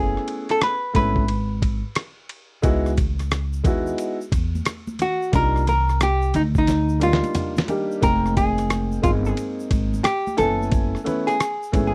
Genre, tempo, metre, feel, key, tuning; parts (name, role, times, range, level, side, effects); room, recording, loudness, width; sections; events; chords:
hip hop, jazz-hop; 89 BPM; 4/4; swing 65% on 16ths; A4 = 441 Hz
archtop guitar, miked and amplified; melody; 0.0-11.9 s; Eb4 to Cb5; -25 LUFS; equal
clear upright piano; accompaniment; 0.0-11.9 s; G3 to Ab5; -28 LUFS; equal
upright bass; bass; 0.0-11.9 s; F1 to Fb2; -26 LUFS; equal
dusty soul sampler-style drum kit; drums; 0.2-11.9 s; hi-hat, kick drum, ride cymbal, rim click, snare drum, toms; -25 LUFS; equal
tube shaker and congas; percussion; 2.6-11.9 s; -39 LUFS; equal
little or no reverb; dry, close 1970s-style studio recording; -22 LUFS; mono
0.0-8.0 A section; 8.0-11.9 A section
drum fill 6.7-8.0
0.0 Gbm11 (rootless); 2.6 Dbm11; 5.3 Cm11; 8.0 Fm11; 10.4 Gbm11